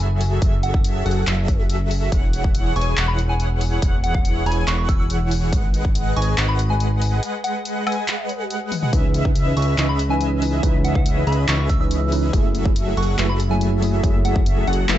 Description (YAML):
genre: future bass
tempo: 141 BPM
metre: 4/4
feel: half-time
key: unclear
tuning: A4 = 442 Hz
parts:
  - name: soft synth bell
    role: melody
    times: 0.0-15.0 s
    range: F#5 to E6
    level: -29 LUFS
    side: left 1 dB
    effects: chorus, phaser, sidechain pumping, digital delay
  - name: airy dreamy lead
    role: arpeggios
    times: 0.0-15.0 s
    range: E5 to G#5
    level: -31 LUFS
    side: right 1 dB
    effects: chorus, sidechain pumping, dub echo
  - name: supersaw chords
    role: riff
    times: 0.0-15.0 s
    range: E3 to G#5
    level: -27 LUFS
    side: equal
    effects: sidechain pumping
  - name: fat analog bass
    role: bass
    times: 0.0-15.0 s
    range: E1 to C#2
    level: -21 LUFS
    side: equal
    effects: sidechain pumping
  - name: big-room dance drum kit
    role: drums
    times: 0.2-15.0 s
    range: handclaps, hi-hat, toms, woodblock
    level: -26 LUFS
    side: left 1 dB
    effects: small room reverb
  - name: electronic kick drum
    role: drums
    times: 0.4-5.9, 8.9-14.4 s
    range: none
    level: -19 LUFS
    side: equal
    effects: small room reverb
  - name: mellow tine electric piano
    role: accompaniment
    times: 8.9-15.0 s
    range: E3 to D#5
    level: -25 LUFS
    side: right 2 dB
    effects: medium stereo tremolo, sidechain pumping
room: little or no reverb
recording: dark, warm production, nothing above 8.0 kHz, faint mains hum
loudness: -17 LUFS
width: side -12 dB against mid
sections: 0.0-15.0 A section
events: break 7.2-8.9; drum fill 8.7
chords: 0.0 F#m9; 2.1 E6; 5.5 G#m7; 8.9 C#m9; 12.3 F#m9